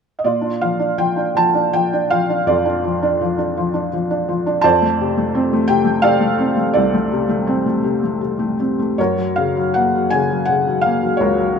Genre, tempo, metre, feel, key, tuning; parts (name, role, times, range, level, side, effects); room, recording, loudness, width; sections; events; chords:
classical, lyrical solo piano; 77-86 BPM; 3/4; rubato; Bb major; A4 = 441 Hz
felt-muted upright piano; solo; 0.2-11.6 s; C2 to A5; -15 LUFS; equal
light reverb; close, detailed microphones; -15 LUFS; side -6 dB against mid
0.3-11.6 A section
0.3 Bb; 4.6 F6; 9.0 Gb